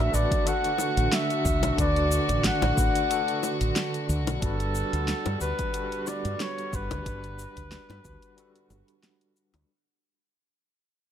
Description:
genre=sunset chillout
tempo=91 BPM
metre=4/4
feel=swing 54% on 16ths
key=G major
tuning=A4 = 440 Hz
part: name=mellow flugelhorn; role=melody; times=0.0-9.0 s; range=A4 to F#5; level=-30 LUFS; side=left 1 dB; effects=digital delay
part: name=overdriven tine electric piano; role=accompaniment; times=0.0-9.7 s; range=D3 to B4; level=-32 LUFS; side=moving between left 4 dB and right 6 dB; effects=fast tremolo, auto-pan, digital delay
part: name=warm chamber string section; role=sustained chords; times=0.0-9.7 s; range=D3 to D5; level=-33 LUFS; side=left 1 dB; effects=none
part: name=mellow fretless electric bass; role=bass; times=0.0-9.6 s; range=G1 to G2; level=-28 LUFS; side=equal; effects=none
part: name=deep house drum kit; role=drums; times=0.1-9.7 s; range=hi-hat, shaker, snare drum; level=-31 LUFS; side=equal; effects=none
part: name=electronic kick drum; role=drums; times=0.3-8.2 s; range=none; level=-30 LUFS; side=equal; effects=none
part: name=bongos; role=percussion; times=0.8-9.7 s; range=none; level=-33 LUFS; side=left 6 dB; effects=none
room=light reverb, studio reverb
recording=none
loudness=-24 LUFS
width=side -10 dB against mid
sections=0.0-9.7 A section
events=fade-out 2.7-9.7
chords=0.0 D6; 4.4 Gmaj7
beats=0.47 1.12 | 1.78 2.44 3.10 3.76 | 4.42 5.08 5.74 6.40 | 7.06 7.72 8.38 9.04

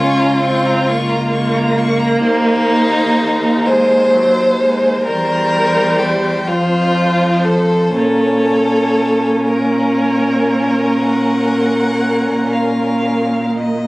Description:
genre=classical, slow romantic movement for string quartet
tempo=38-45 BPM (dotted quarters)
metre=12/8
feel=rubato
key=Bb minor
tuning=A4 = 440 Hz
part: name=rich violin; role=melody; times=0.0-13.9 s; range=Bb4 to Db6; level=-24 LUFS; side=left 2 dB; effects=none
part: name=warm violin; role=second line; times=0.0-13.6 s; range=Eb4 to C5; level=-16 LUFS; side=equal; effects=none
part: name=warm viola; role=accompaniment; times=0.0-13.3 s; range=F3 to Db4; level=-17 LUFS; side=equal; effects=none
part: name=warm cello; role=bass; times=0.0-13.8 s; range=Db2 to Bb2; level=-18 LUFS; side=right 1 dB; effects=none
room=light reverb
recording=recorded on a phone in the room, studio reverb, compression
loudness=-12 LUFS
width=side -20 dB against mid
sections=0.0-13.9 A section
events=none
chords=0.0 Bbm/Db; 2.2 Ebm6; 5.0 C7/E; 6.5 F5; 8.0 Bbm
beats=0.88 | 2.22 3.66 5.04 6.48 | 7.96 9.48 11.03 12.54

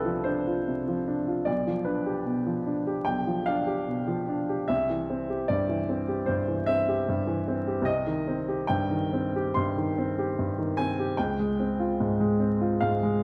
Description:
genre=classical, romantic character piece for solo piano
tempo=74 BPM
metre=4/4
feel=rubato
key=C major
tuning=A4 = 440 Hz
part: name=bright grand piano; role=solo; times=0.0-13.2 s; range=B1 to C6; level=-28 LUFS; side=equal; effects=none
room=wet recital hall reverb, RT60 1.4 s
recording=dark, warm production, vinyl crackle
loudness=-28 LUFS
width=mono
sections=0.0-13.2 A section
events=none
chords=0.0 Dm7/C; 1.5 G7/B; 4.7 C; 7.9 Cm; 11.2 Dbmaj7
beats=0.67 | 1.47 2.27 3.07 3.88 | 4.70 5.50 6.29 7.08 | 7.87 8.69 9.56 10.38 | 11.18 11.98 12.80

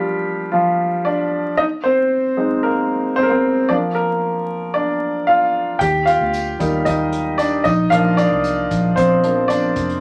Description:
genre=piano-driven pop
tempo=114 BPM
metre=4/4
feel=straight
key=Bb major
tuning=A4 = 441 Hz
part: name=clear upright piano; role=accompaniment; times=0.0-10.0 s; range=F3 to G5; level=-18 LUFS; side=equal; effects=none
part: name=vintage muted fingered electric bass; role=bass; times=5.8-10.0 s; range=F1 to Eb2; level=-24 LUFS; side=equal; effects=none
part: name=unplugged drum kit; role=drums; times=5.8-10.0 s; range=hi-hat, kick drum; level=-36 LUFS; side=equal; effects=none
part: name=tambourine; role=percussion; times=6.1-9.9 s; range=none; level=-44 LUFS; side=equal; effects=none
room=moderate studio reverb, RT60 0.6 s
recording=vinyl crackle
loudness=-18 LUFS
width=mono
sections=0.0-10.0 A section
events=upright piano solo 0.0-10.0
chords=0.0 Bb; 1.6 Ab; 3.7 Bb; 5.8 Eb; 7.7 Bb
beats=0.01 0.53 1.06 | 1.59 2.12 2.65 3.17 | 3.70 4.23 4.76 5.28 | 5.81 6.34 6.87 7.39 | 7.92 8.45 8.97 9.50

